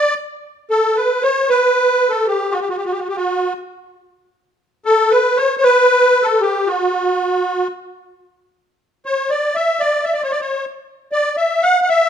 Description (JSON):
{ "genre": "arabic", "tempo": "115 BPM", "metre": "4/4", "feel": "straight", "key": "D maqam rast", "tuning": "A4 = 444 Hz", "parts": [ { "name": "musette accordion", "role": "solo", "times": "0.0-12.1 s", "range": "F#4-50c to F#5-50c", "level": "-14 LUFS", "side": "equal", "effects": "none" } ], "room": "moderate recital hall reverb, RT60 1.4 s", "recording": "minimal, uncompressed stereo recording", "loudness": "-14 LUFS", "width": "side -8 dB against mid", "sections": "0.7-12.1 A section", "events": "none", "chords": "none", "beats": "0.19 | 0.71 1.23 1.75 2.27 | 2.78 3.30 3.82 4.34 | 4.86 5.38 5.90 6.42 | 6.94 7.46 7.98 8.50 | 9.02 9.54 10.07 10.59 | 11.11 11.63" }